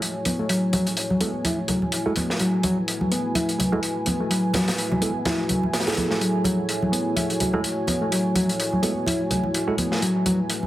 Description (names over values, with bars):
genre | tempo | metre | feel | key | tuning
breakbeat, breaks | 126 BPM | 4/4 | swing 57% on 16ths | F# minor | A4 = 440 Hz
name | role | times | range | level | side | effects
dark analog pad | sustained chords | 0.0-10.7 s | A3 to G#5 | -27 LUFS | equal | chorus
crunchy breakbeat drum kit | drums | 0.0-10.6 s | hi-hat, snare drum | -27 LUFS | equal | high-pass filter on kick, high-pass filter on hats, high-pass filter on snare, high-pass filter on room
overdriven reed electric piano | riff | 0.3-10.7 s | F#3 to E4 | -25 LUFS | left 1 dB | vintage 12-bit sampler grit, low-pass filter, ping-pong delay
congas | percussion | 0.3-10.7 s | none | -29 LUFS | right 1 dB | none
bell-like tine electric piano | stabs | 1.2-9.7 s | G#3 to A4 | -29 LUFS | right 2 dB | low-pass filter, ping-pong delay
room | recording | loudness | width
wet studio reverb, RT60 0.6 s | heavily compressed radio sound, multiband compression | -21 LUFS | side -14 dB against mid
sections
0.0-10.7 A section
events
none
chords
0.0 F#m9